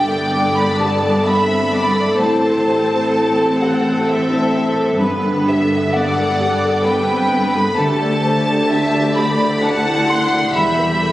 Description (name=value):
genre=cinematic, emotional film score for orchestra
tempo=65 BPM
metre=3/4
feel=rubato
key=G major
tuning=A4 = 440 Hz
part: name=warm symphonic violin section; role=melody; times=0.0-11.1 s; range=E5 to C6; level=-22 LUFS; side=equal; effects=none
part: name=warm symphonic violin section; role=second line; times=0.0-11.1 s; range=A4 to F#5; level=-21 LUFS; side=equal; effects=none
part: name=rich symphonic viola section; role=accompaniment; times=0.0-11.1 s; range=G3 to A4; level=-22 LUFS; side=equal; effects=none
part: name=warm concert grand piano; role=accompaniment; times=0.0-11.1 s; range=D2 to C6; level=-20 LUFS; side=equal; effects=none
part: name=concert harp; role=arpeggios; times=0.0-11.1 s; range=G2 to D5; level=-25 LUFS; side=left 2 dB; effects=none
part: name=rich symphonic double bass section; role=bass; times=0.0-11.1 s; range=E1 to D2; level=-27 LUFS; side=right 1 dB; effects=none
part: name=warm symphonic cello section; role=bass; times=0.0-11.1 s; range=D2 to A2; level=-23 LUFS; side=equal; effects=none
room=wet scoring stage reverb, RT60 2.1 s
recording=recorded on a phone in the room, studio reverb, compression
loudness=-14 LUFS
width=side -15 dB against mid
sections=0.0-11.1 A section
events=none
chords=0.0 Gadd9; 2.2 Am7; 5.0 Gadd9; 7.8 Dsus4; 10.6 Em